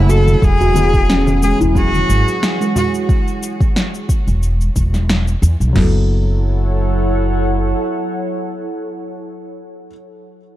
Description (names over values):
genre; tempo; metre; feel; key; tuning
organic downtempo; 90 BPM; 4/4; swing 54% on 16ths; F# minor; A4 = 437 Hz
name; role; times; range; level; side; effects
rich cello; melody; 0.0-2.9 s; E4 to A4; -20 LUFS; left 1 dB; digital delay
warbly tape-like pad; sustained chords; 0.0-9.2 s; E3 to F#5; -24 LUFS; right 1 dB; chorus, built-in reverb, sidechain pumping
upright bass; bass; 0.0-7.7 s; E1 to E2; -15 LUFS; equal; sidechain pumping
steel tongue drum; arpeggios; 0.1-6.1 s; C#3 to F#4; -21 LUFS; right 1 dB; digital delay
electronic cabasa and snare drum; drums; 0.1-5.7 s; none; -21 LUFS; equal; overdrive
bongos and congas; percussion; 0.1-2.9 s; none; -23 LUFS; left 1 dB; none
deep house drum kit; drums; 0.4-5.9 s; crash cymbal, kick drum, snare drum, toms; -16 LUFS; equal; overdrive
felt-muted upright piano; accompaniment; 0.7-9.9 s; F#3 to A4; -25 LUFS; left 4 dB; sidechain pumping, digital delay
room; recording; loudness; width
small room ambience; dark, warm production; -13 LUFS; side -14 dB against mid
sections
0.0-5.8 A section; 5.8-8.4 B section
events
none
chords
0.4 E6; 5.8 F#m7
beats
| 0.42 1.09 1.76 2.42 | 3.09 3.76 4.42 5.09 | 5.76 6.42 7.09 7.76